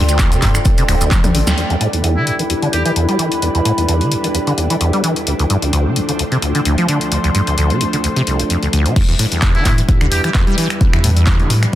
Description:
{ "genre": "acid house", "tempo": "130 BPM", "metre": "4/4", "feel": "swing 54% on 16ths", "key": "E minor", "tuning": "A4 = 440 Hz", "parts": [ { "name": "string machine, full ensemble", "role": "sustained chords", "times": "0.0-11.8 s", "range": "F3 to C5", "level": "-23 LUFS", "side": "equal", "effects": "phaser, ensemble chorus, sidechain pumping" }, { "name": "acid bass, saw", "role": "riff", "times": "0.0-11.8 s", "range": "D1 to G3", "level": "-17 LUFS", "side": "equal", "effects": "tube saturation, wide subtle chorus, cassette tape, tape echo" }, { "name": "saturated sub bass", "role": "bass", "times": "0.0-1.5, 9.0-11.7 s", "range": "D1 to A2", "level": "-16 LUFS", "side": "equal", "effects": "sidechain pumping" }, { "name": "warbly tape-like pad", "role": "texture", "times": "0.0-9.0 s", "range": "E4 to C6", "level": "-23 LUFS", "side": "left 1 dB", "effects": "chorus, built-in reverb, sidechain pumping" }, { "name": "punchy analog drum machine", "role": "drums", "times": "0.1-11.7 s", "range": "crash cymbal, finger snaps, handclaps, hi-hat, rim click, snare drum, toms", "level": "-21 LUFS", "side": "left 2 dB", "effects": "soft clipping on snare" }, { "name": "maracas", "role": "percussion", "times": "0.1-1.6 s", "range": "none", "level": "-26 LUFS", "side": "right 2 dB", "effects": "none" }, { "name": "electronic kick drum", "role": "drums", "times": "0.2-1.2, 9.0-11.4 s", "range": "none", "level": "-14 LUFS", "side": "equal", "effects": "none" }, { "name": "trumpet with metal mute", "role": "melody", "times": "2.2-2.9, 9.5-10.3 s", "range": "E4 to G4", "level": "-24 LUFS", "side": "right 1 dB", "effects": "tape echo" } ], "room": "light reverb", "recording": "dense, heavily limited modern master", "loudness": "-13 LUFS", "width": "side -13 dB against mid", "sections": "0.0-1.6 A section; 1.6-9.0 B section; 9.0-11.8 A section", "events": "drop 0.0-1.6, 9.0-11.8; drum fill 1.1-1.6; band accent 1.5; filter sweep on acid bass 1.6-9.0", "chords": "0.0 Dm7; 1.6 Em7; 5.3 Dm7; 9.0 Em7" }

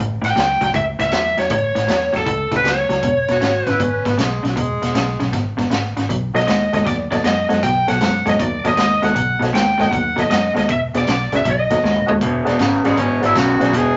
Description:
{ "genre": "electric blues shuffle", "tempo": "157 BPM", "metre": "4/4", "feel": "swing 66% on 8ths", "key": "E major", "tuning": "A4 = 439 Hz", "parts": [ { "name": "electric guitar through a small old amp", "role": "riff", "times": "0.0-14.0 s", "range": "E2 to G#3", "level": "-23 LUFS", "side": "equal", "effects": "none" }, { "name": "vintage muted fingered electric bass", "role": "bass", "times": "0.0-13.9 s", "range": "E1 to F#2", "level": "-27 LUFS", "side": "equal", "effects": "none" }, { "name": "raw garage drum kit", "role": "drums", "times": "0.2-13.9 s", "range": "hi-hat, kick drum, snare drum, toms", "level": "-26 LUFS", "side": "equal", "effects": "none" }, { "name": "lead guitar through a small cranked amp", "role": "melody", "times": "0.3-12.1 s", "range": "A4 to G5", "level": "-21 LUFS", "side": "equal", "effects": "overdrive" }, { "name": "bright tenor saxophone", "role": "second line", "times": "3.3-5.3, 12.8-14.0 s", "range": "F#3 to G#4", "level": "-24 LUFS", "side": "equal", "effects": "none" }, { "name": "warm upright piano", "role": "accompaniment", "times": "6.3-13.7 s", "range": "F#4 to F#5", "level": "-27 LUFS", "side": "equal", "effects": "none" } ], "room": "moderate studio reverb, RT60 0.9 s", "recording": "nothing above 7.7 kHz", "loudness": "-18 LUFS", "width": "mono", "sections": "0.0-12.2 A section; 12.2-14.0 B section", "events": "drum fill 11.8-12.2; tenor saxophone solo 12.2-14.0", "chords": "0.0 A; 3.0 E; 6.1 B9; 10.7 E9; 11.5 B9; 12.2 E9" }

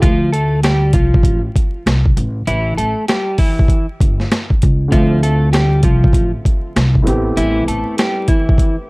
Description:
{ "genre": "hip hop, boom-bap hip-hop", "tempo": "98 BPM", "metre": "4/4", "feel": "swing 61% on 16ths", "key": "D dorian", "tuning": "A4 = 436 Hz", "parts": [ { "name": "electric guitar at the edge of break-up", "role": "melody", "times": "0.0-8.8 s", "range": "E3 to A4", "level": "-19 LUFS", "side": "equal", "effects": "high-pass filter, low-pass filter, tape echo" }, { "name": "dark concert grand piano", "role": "accompaniment", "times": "0.0, 4.9-8.9 s", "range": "A2 to E5", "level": "-22 LUFS", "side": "equal", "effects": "high-pass filter, low-pass filter" }, { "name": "upright bass", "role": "bass", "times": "0.0-7.8 s", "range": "G1 to D2", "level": "-15 LUFS", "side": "equal", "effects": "transformer saturation" }, { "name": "boom bap sampler-style drum kit", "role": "drums", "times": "0.0-8.8 s", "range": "hi-hat, kick drum, snare drum", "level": "-14 LUFS", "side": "equal", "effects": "none" } ], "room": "little or no reverb", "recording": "dry, gritty hardware recording, vinyl crackle", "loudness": "-12 LUFS", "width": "side -26 dB against mid", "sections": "0.0-8.9 A section", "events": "break 0.0-4.9", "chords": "0.0 Dm7; 2.2 A5; 4.9 Dm9; 7.1 Am9" }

